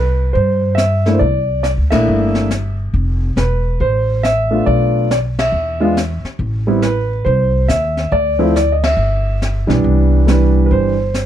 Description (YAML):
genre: jazz piano trio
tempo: 139 BPM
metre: 4/4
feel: swing 65% on 8ths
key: C major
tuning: A4 = 436 Hz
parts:
  - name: warm concert grand piano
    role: melody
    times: 0.0-11.3 s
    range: E3 to E5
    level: -16 LUFS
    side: right 1 dB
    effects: none
  - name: upright bass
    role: bass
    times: 0.0-11.3 s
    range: E1 to G2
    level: -16 LUFS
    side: equal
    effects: none
  - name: jazz brush drum kit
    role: drums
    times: 0.3-11.3 s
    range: brushed snare drum, hi-hat, kick drum, ride cymbal, snare drum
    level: -24 LUFS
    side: left 2 dB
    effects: none
room: little or no reverb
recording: dark, warm production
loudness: -13 LUFS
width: side -10 dB against mid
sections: 0.0-11.3 A section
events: band accent 1.9, 5.3, 8.8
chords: 0.0 Cmaj7; 1.2 C13; 2.9 Fmaj7; 4.7 Bm7b5; 5.5 N.C.; 6.4 Amadd9; 8.1 N.C.; 9.0 G; 9.8 Cmaj9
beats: 0.34 0.78 | 1.21 1.64 2.07 2.50 | 2.94 3.37 3.80 4.23 | 4.66 5.10 5.53 5.96 | 6.39 6.83 7.26 7.69 | 8.12 8.55 8.98 9.41 | 9.85 10.28 10.71 11.14